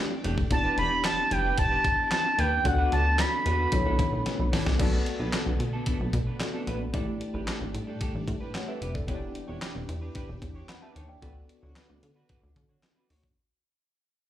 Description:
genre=early-eighties boogie funk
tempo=112 BPM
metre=4/4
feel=straight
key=B minor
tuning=A4 = 437 Hz
part: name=mellow tine electric piano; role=accompaniment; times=0.0-13.3 s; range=A3 to B5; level=-35 LUFS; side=left 2 dB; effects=medium stereo tremolo, slapback echo
part: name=string machine, violins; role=sustained chords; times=0.0-13.3 s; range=D3 to G4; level=-41 LUFS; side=left 1 dB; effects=ensemble chorus
part: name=clean electric guitar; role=riff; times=0.1-13.3 s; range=A3 to C#5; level=-38 LUFS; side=right 3 dB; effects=analog chorus, slapback echo
part: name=plucky analog bass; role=bass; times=0.2-13.3 s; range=E1 to D3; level=-29 LUFS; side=equal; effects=none
part: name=crisp 8-bit digital drum machine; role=drums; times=0.2-13.4 s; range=crash cymbal, handclaps, hi-hat, kick drum, snare drum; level=-31 LUFS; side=equal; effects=none
part: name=expressive synth lead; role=melody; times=0.5-4.5 s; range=F#5 to B5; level=-26 LUFS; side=right 1 dB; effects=chorus, slapback echo
room=digital ambience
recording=live gig heard through the venue's PA, club reverb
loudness=-25 LUFS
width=side -12 dB against mid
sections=0.0-4.8 A section; 4.8-13.4 B section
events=drum fill 4.3-4.8; fade-out 4.8-13.4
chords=0.0 A7sus4; 0.5 Em7; 2.7 D6; 3.7 Bm11; 4.8 Bm7; 6.9 A7sus4; 9.1 Em7; 11.2 D6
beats=| 0.51 1.04 1.58 2.12 | 2.65 3.19 3.72 4.26 | 4.79 5.33 5.87 6.40 | 6.94 7.47 8.01 8.54 | 9.08 9.62 10.15 10.69 | 11.22 11.76 12.29 12.83

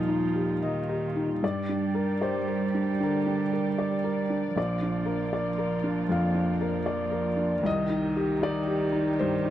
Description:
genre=neoclassical piano and strings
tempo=77 BPM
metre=4/4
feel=rubato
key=G minor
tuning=A4 = 440 Hz
part: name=warm cello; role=second line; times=0.0-9.5 s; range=Eb3 to G3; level=-31 LUFS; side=right 6 dB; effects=none
part: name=felt-muted upright piano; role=accompaniment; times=0.0-9.5 s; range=Bb1 to F5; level=-26 LUFS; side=left 2 dB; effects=none
part: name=dark studio string section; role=sustained chords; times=0.0-9.5 s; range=G3 to D5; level=-36 LUFS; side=right 2 dB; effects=none
room=light reverb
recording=dry, close 1970s-style studio recording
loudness=-25 LUFS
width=side -12 dB against mid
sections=0.0-9.5 A section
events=none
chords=0.0 Ebadd9; 1.4 Gm; 4.6 Bb; 7.7 Cm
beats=0.62 | 1.42 2.22 3.01 3.79 | 4.56 5.33 6.11 6.88 | 7.66 8.42 9.19

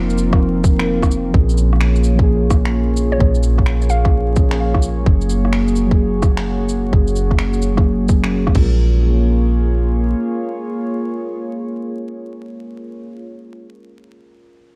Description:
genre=future garage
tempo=129 BPM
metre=4/4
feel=swing 65% on 16ths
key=Bb minor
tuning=A4 = 440 Hz
part: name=muted felt-like synth keys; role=accompaniment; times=0.0-14.8 s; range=F3 to Bb4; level=-24 LUFS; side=equal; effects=chorus, vintage 12-bit sampler grit, sidechain pumping, low-pass filter, analog delay
part: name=warbly tape-like pad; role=sustained chords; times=0.0-13.3 s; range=Eb3 to Db5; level=-26 LUFS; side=equal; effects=chorus, built-in reverb, sidechain pumping
part: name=soft 808-style bass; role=bass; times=0.0-10.1 s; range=F1 to Bb1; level=-19 LUFS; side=equal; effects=sidechain pumping
part: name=organic electronic drum kit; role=drums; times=0.1-8.7 s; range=crash cymbal, finger snaps, rim click, shaker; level=-30 LUFS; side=equal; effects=none
part: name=electronic kick drum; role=drums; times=0.3-8.7 s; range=none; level=-17 LUFS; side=equal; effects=none
part: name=mallet-like synth pluck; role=melody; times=3.1-4.3 s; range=Db5 to F5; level=-28 LUFS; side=equal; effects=chorus, analog delay
room=light reverb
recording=dark, warm production, vinyl crackle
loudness=-16 LUFS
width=mono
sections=0.0-1.3 A section; 1.3-8.8 B section; 8.8-12.5 C section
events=none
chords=0.0 F7sus4; 1.3 Bbm7; 5.1 Gbadd9; 8.6 Bbm7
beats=0.41 0.88 | 1.34 1.81 2.27 2.74 | 3.20 3.67 4.13 4.60 | 5.07 5.53 6.00 6.46 | 6.92 7.39 7.86 8.32 | 8.79 9.25 9.72 10.18 | 10.65 11.11 11.58 12.04

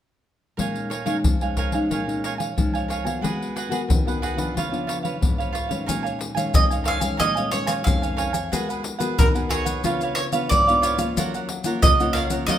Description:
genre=samba and choro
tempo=91 BPM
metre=4/4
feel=straight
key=Bb minor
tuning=A4 = 438 Hz
part: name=cavaquinho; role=accompaniment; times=0.6-12.6 s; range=F4 to Ab5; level=-28 LUFS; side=right 5 dB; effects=none
part: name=nylon-string guitar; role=accompaniment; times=0.6-12.6 s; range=F2 to Bb4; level=-27 LUFS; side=left 2 dB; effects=none
part: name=surdo, pandeiro and maracas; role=percussion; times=0.6-12.6 s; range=none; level=-23 LUFS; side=left 1 dB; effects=none
part: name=bowl-back mandolin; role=melody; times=6.5-12.6 s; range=Bb4 to F5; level=-22 LUFS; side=right 3 dB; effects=none
room=wet large studio reverb, RT60 1.4 s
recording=minimal, uncompressed stereo recording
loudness=-20 LUFS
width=side -10 dB against mid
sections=0.6-5.9 A section; 5.9-12.6 B section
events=none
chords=0.6 Bbm7; 3.2 Abm9; 4.6 Db7b9; 5.9 Bbm7; 8.5 Abm9; 9.8 Db7b9; 11.2 Gbmaj7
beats=| 0.58 1.24 1.91 2.57 | 3.23 3.89 4.55 5.21 | 5.87 6.54 7.20 7.86 | 8.52 9.18 9.84 10.50 | 11.16 11.83 12.49

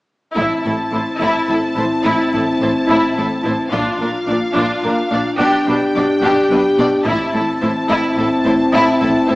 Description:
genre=cinematic, epic orchestral film score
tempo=108 BPM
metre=3/4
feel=straight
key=A minor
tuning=A4 = 440 Hz
part: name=dark French horn section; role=sustained chords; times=0.3-9.4 s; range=C4 to G4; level=-18 LUFS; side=left 1 dB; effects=none
part: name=rich symphonic violin section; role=melody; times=0.4-9.4 s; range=F5 to A5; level=-25 LUFS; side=left 1 dB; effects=none
part: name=warm symphonic violin section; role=second line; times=0.4-9.4 s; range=E4 to D5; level=-22 LUFS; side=left 1 dB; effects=none
part: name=rich studio viola section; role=accompaniment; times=0.4-9.4 s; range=D4 to E4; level=-21 LUFS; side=equal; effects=none
part: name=rich studio double bass section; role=bass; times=0.4-9.4 s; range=A1 to B1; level=-29 LUFS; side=right 1 dB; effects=none
part: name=rich symphonic cello section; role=bass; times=0.4-9.4 s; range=A2 to B2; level=-23 LUFS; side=equal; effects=none
part: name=taiko ensemble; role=drums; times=0.4-8.1 s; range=none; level=-30 LUFS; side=equal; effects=none
room=moderate scoring stage reverb, RT60 1.7 s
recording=small speaker sound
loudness=-14 LUFS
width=side -20 dB against mid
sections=0.4-9.4 A section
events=build-up 0.4-9.4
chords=0.4 Am; 3.7 Bb; 5.4 G/B; 7.1 Am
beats=| 0.36 0.93 1.49 | 2.05 2.61 3.17 | 3.73 4.29 4.84 | 5.40 5.96 6.51 | 7.07 7.62 8.18 | 8.73 9.29

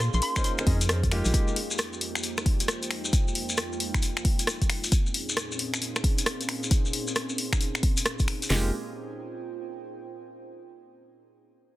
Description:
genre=UK garage, two-step garage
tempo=134 BPM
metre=4/4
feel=swing 64% on 16ths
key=F minor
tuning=A4 = 439 Hz
part: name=hollow square pluck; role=melody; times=0.0-0.5 s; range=C6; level=-32 LUFS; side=left 1 dB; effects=chorus, cassette tape, tape echo
part: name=airy breathy pad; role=sustained chords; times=0.0-8.7 s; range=F2 to Ab4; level=-37 LUFS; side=right 1 dB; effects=chorus, sidechain pumping
part: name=organ-like FM bass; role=bass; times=0.0-1.3, 8.5-8.7 s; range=F1 to F2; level=-25 LUFS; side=equal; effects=none
part: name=punchy analog drum machine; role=drums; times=0.0-8.5 s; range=finger snaps, hi-hat, rim click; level=-29 LUFS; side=left 1 dB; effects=overdrive
part: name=maracas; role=percussion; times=0.0-8.5 s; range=none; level=-34 LUFS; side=left 3 dB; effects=none
part: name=warbly tape-like pad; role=texture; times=0.0-10.3 s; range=F4 to C6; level=-43 LUFS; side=right 3 dB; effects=chorus, built-in reverb, sidechain pumping
part: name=warm concert grand piano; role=stabs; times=0.4-1.5, 8.5-8.7 s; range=Ab3 to Eb5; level=-34 LUFS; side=equal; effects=tape echo
part: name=house drum kit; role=drums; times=0.4-8.6 s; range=hi-hat, kick drum, snare drum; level=-25 LUFS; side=equal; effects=none
room=digital ambience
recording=dense, heavily limited modern master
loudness=-24 LUFS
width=side -16 dB against mid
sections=0.0-8.5 A section; 8.5-10.3 B section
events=fade-out on ambient pad 0.0-8.5; filter sweep on analog synth pad 0.0-8.5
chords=0.0 Bbm11; 1.3 Fm11; 4.9 Bbm11; 8.5 Fm11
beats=0.00 0.44 0.89 | 1.34 1.79 2.23 2.68 | 3.13 3.58 4.03 4.47 | 4.92 5.37 5.82 6.26 | 6.71 7.16 7.61 8.05 | 8.50 8.95 9.40 9.85

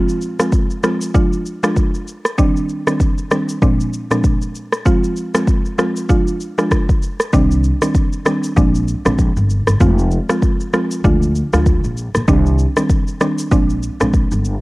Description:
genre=afrobeats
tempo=97 BPM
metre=4/4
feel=swing 58% on 16ths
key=C minor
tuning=A4 = 442 Hz
part: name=mallet-like synth pluck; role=accompaniment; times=0.0-14.2 s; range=Bb2 to F4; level=-18 LUFS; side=right 1 dB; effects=chorus, cassette tape
part: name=afro-pop drum kit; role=drums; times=0.1-14.6 s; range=kick drum, rim click, shaker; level=-16 LUFS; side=equal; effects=cassette tape
part: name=upright bass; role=bass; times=7.3-14.5 s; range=F1 to D2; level=-17 LUFS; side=equal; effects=none
room=digital ambience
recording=home recording on cassette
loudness=-14 LUFS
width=side -20 dB against mid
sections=0.0-14.6 A section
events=none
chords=0.0 Fm; 1.1 Ddim; 2.4 Cmadd9; 3.6 Bb7; 4.9 Fm; 6.1 Ddim; 7.3 Cmadd9; 8.6 Bb7; 9.8 Fm; 11.0 Ddim; 12.3 Cmadd9; 13.5 Bb7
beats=0.53 1.15 1.76 | 2.38 3.00 3.62 4.24 | 4.86 5.48 6.09 6.71 | 7.33 7.95 8.57 9.19 | 9.81 10.42 11.04 11.66 | 12.28 12.90 13.52 14.14

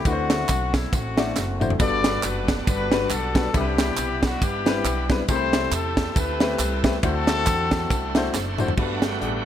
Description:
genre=uptempo gospel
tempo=138 BPM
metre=4/4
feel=swing 57% on 8ths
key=G major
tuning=A4 = 443 Hz
part: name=warm horn section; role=melody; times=0.0-8.3 s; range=A3 to D5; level=-26 LUFS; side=left 4 dB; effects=none
part: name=warm grand piano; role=accompaniment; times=0.1-9.4 s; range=G2 to B5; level=-28 LUFS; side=left 4 dB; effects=none
part: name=upright bass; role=bass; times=0.1-9.4 s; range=F#1 to E2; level=-29 LUFS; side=right 1 dB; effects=none
part: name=tight funk drum kit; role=drums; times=0.1-9.3 s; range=crash cymbal, hi-hat, kick drum, ride cymbal, snare drum, toms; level=-24 LUFS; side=right 1 dB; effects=none
part: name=tambourine and handclaps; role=percussion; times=0.1-8.7 s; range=none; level=-33 LUFS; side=right 6 dB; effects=none
part: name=bright tonewheel organ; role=sustained chords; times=1.8-9.4 s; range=G3 to C5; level=-31 LUFS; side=right 4 dB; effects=slow rotary speaker, overdrive
room=light reverb, small room ambience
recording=none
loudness=-20 LUFS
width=side -10 dB against mid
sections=0.0-8.8 A section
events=drum fill 1.4-1.8, 8.3-8.8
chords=0.1 D9; 1.8 Gmaj9; 3.5 Cmaj9; 5.3 Am9/C; 7.0 D9; 8.8 Gmaj7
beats=| 0.05 0.49 0.92 1.36 | 1.80 2.23 2.67 3.11 | 3.54 3.98 4.42 4.85 | 5.29 5.73 6.16 6.60 | 7.03 7.47 7.91 8.34 | 8.78 9.22

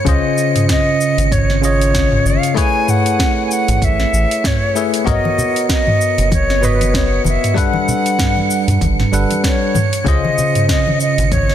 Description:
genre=sunset chillout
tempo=96 BPM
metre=4/4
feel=swing 57% on 16ths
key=unclear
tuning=A4 = 440 Hz
part: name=bright concert flute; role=melody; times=0.0-11.5 s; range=B4 to G#5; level=-19 LUFS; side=equal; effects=digital delay
part: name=bell-like tine electric piano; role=accompaniment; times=0.0-11.5 s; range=C#3 to F#5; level=-18 LUFS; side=moving between left 8 dB and right 7 dB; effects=auto-pan, low-pass filter, digital delay
part: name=wind-like tuned noise texture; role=texture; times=0.0-11.5 s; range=C#7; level=-28 LUFS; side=right 3 dB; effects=built-in reverb
part: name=round analog bass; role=bass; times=0.1-11.5 s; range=F#1 to G2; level=-17 LUFS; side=equal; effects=tube saturation
part: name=electronic kick drum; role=drums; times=0.1-11.5 s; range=none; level=-19 LUFS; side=equal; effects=none
part: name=smooth R&B drum kit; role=drums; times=0.1-11.5 s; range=cabasa, hi-hat, snare drum, toms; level=-20 LUFS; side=right 1 dB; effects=overdrive
part: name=congas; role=percussion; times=5.3-11.5 s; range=none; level=-24 LUFS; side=left 3 dB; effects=none
room=light reverb, digital ambience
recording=dense, heavily limited modern master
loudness=-12 LUFS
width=side -10 dB against mid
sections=0.0-11.5 A section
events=none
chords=0.0 C#maj9; 2.6 Amaj9; 5.1 Bmaj9; 7.6 Gmaj9; 9.8 C#maj9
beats=| 0.07 0.69 1.32 1.94 | 2.57 3.19 3.82 4.44 | 5.07 5.69 6.32 6.94 | 7.57 8.19 8.82 9.44 | 10.07 10.69 11.32

